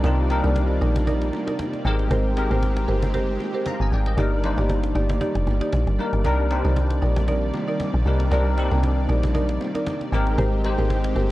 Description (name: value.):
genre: amapiano.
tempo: 116 BPM.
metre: 4/4.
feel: swing 55% on 16ths.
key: C minor.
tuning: A4 = 438 Hz.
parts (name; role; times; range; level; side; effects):
bell-like tine electric piano; accompaniment; 0.0-11.3 s; G3 to Bb5; -27 LUFS; left 2 dB; ensemble chorus.
lush unison pad; sustained chords; 0.0-11.3 s; C3 to D5; -32 LUFS; right 1 dB; chorus.
buzzing marimba with medium mallets; stabs; 0.0-11.3 s; Eb4 to D5; -29 LUFS; right 2 dB; tape echo.
deep log drum bass; bass; 0.0-11.3 s; F1 to C2; -21 LUFS; equal; none.
cajon; drums; 0.0-11.2 s; none; -32 LUFS; equal; none.
congas and bongos; percussion; 0.0-11.3 s; none; -36 LUFS; right 1 dB; none.
room: studio reverb.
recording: dry, gritty hardware recording, transformer saturation, cassette tape.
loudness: -20 LUFS.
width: side -17 dB against mid.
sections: 0.0-11.3 A section.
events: none.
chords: 0.0 Cm9; 1.9 Abmaj9; 4.2 Ebmaj7/G; 6.2 Cm9; 10.1 Abmaj9.